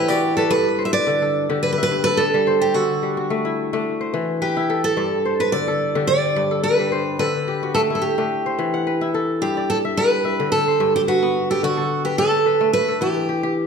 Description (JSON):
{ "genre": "west african traditional, West African string and xylophone music", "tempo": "108 BPM", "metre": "4/4", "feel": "swing 54% on 16ths", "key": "G major", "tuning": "A4 = 440 Hz", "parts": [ { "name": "picked steel-string acoustic guitar", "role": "melody", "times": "0.0-13.5 s", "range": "F#4 to E5", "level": "-20 LUFS", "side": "right 3 dB", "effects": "none" }, { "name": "kora", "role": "arpeggios", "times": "0.0-13.7 s", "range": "G2 to F#5", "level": "-22 LUFS", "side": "left 4 dB", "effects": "none" } ], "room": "wet recital hall reverb, RT60 1.4 s", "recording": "none", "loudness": "-17 LUFS", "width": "side -6 dB against mid", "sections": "0.5-9.4 A section; 9.4-13.7 B section", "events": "none", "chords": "0.0 Em; 0.5 G; 2.7 D; 3.9 E5; 5.0 G; 7.2 D; 8.3 Em; 9.4 G; 11.6 D5; 12.7 Em", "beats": "| 0.51 1.06 1.62 2.18 | 2.74 3.30 3.86 4.42 | 4.97 5.53 6.09 6.64 | 7.20 7.75 8.31 8.86 | 9.42 9.97 10.52 11.08 | 11.63 12.18 12.73 13.28" }